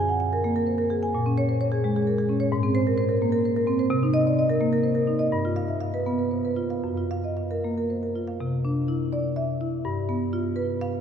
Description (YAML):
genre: classical, contemporary piece for solo marimba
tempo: 75-88 BPM (dotted quarters)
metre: 6/8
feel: rubato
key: unclear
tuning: A4 = 440 Hz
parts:
  - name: marimba with medium hard mallets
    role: solo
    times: 0.0-11.0 s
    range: Gb2 to Ab5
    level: -22 LUFS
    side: equal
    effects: none
room: wet cathedral reverb, RT60 5.9 s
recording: minimal, uncompressed stereo recording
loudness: -22 LUFS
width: side -8 dB against mid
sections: 0.0-8.4 A section; 8.4-11.0 B section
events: none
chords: 0.0 Gbadd9; 1.1 Bbm7; 2.5 Abadd9; 3.9 Cm7; 5.3 G; 6.8 F#maj7; 8.4 Cadd9; 9.8 G7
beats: 0.43 | 1.13 1.83 | 2.52 3.21 | 3.91 4.62 | 5.33 6.07 | 6.84 7.64 | 8.41 9.13 | 9.85 10.57